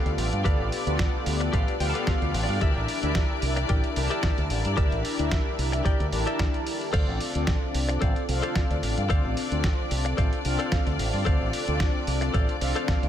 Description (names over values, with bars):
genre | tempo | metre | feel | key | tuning
nu-disco, nu disco | 111 BPM | 4/4 | swing 54% on 16ths | D minor | A4 = 440 Hz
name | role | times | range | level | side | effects
mellow synth brass | accompaniment | 0.0-13.1 s | B3 to A5 | -30 LUFS | left 1 dB | chorus, digital delay
rich symphonic string section | sustained chords | 0.0-13.1 s | D4 to D5 | -35 LUFS | left 4 dB | sidechain pumping
direct-recorded clean electric guitar | riff | 0.0-13.1 s | G4 to A5 | -33 LUFS | left 4 dB | wide subtle chorus, digital delay
fingered electric bass with an envelope filter | bass | 0.1-13.1 s | A1 to G2 | -28 LUFS | equal | none
dusty soul sampler-style drum kit | drums | 0.1-13.1 s | crash cymbal, hi-hat, snare drum | -33 LUFS | right 1 dB | none
electronic kick drum | drums | 0.5-13.0 s | none | -26 LUFS | equal | none
room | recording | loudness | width
little or no reverb | none | -23 LUFS | side -10 dB against mid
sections
0.0-13.1 A section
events
clean electric guitar fill 1.5-2.6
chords
0.0 G9; 2.6 Em7b5; 6.9 Dm7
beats
| 0.45 0.99 1.53 2.07 | 2.61 3.15 3.69 4.24 | 4.78 5.32 5.86 6.40 | 6.94 7.48 8.02 8.56 | 9.10 9.64 10.18 10.72 | 11.26 11.80 12.34 12.88